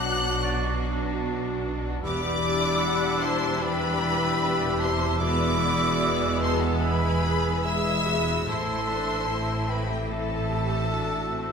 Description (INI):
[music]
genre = cinematic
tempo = 75 BPM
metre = 4/4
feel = rubato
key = unclear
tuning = A4 = 439 Hz
[part]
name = warm symphonic violin section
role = melody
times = 0.0-11.5 s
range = G5 to F#6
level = -30 LUFS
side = left 3 dB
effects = none
[part]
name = mellow hollow concert flute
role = second line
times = 0.0-11.4 s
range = E5 to D6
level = -34 LUFS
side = left 1 dB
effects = none
[part]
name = warm studio violin section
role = second line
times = 0.0-11.5 s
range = G4 to F#5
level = -34 LUFS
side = right 1 dB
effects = none
[part]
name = rich studio viola section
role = accompaniment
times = 0.0-11.5 s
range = C3 to F#5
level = -31 LUFS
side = equal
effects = none
[part]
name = warm French horn section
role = sustained chords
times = 0.0-11.5 s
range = F#3 to E4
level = -33 LUFS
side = left 3 dB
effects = none
[part]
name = concert harp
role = arpeggios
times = 0.0-11.5 s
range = A2 to D5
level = -35 LUFS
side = left 8 dB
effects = none
[part]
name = rich studio cello section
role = bass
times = 0.0-11.5 s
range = E2 to B2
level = -32 LUFS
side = right 3 dB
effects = none
[part]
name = warm studio double bass section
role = bass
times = 0.0-11.5 s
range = E1 to B1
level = -31 LUFS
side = right 2 dB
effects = none
[part]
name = clear oboe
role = second line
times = 0.4-11.5 s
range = D5 to E5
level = -33 LUFS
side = right 3 dB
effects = none
[part]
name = warm clarinet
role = second line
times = 0.4-11.5 s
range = F#4 to A4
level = -35 LUFS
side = equal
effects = none
[sound]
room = wet scoring stage reverb, RT60 1.6 s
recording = minimal, uncompressed stereo recording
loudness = -23 LUFS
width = side -6 dB against mid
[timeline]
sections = 0.0-11.5 A section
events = none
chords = 0.0 Bm; 2.0 Em7; 5.2 E7; 8.5 Am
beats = 0.44 1.24 | 2.04 2.83 3.62 4.41 | 5.21 6.02 6.81 7.65 | 8.47 9.28 10.10 10.92